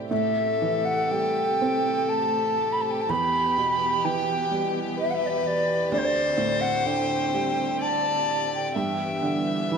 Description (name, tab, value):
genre	celtic folk, Celtic slow air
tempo	59-65 BPM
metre	3/4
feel	rubato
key	A minor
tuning	A4 = 442 Hz
part	felt-muted upright piano	accompaniment	0.0-9.8 s	D2 to G5	-30 LUFS	right 3 dB	none
part	rich studio string section	sustained chords	0.0-9.8 s	C3 to G4	-33 LUFS	left 2 dB	none
part	wooden flute	melody	0.1-9.8 s	C5 to B5	-25 LUFS	right 1 dB	slapback echo
part	dark fiddle	second line	0.1-9.8 s	G4 to E5	-29 LUFS	left 4 dB	none
room	moderate scoring stage reverb, RT60 2.0 s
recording	none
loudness	-22 LUFS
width	side -6 dB against mid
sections	0.1-9.8 A section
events	none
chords	0.1 Am7; 3.1 Em; 5.9 D7sus4; 8.8 G6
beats	| 0.11 1.12 2.12 | 3.10 4.04 4.97 | 5.90 6.85 7.81 | 8.76 9.71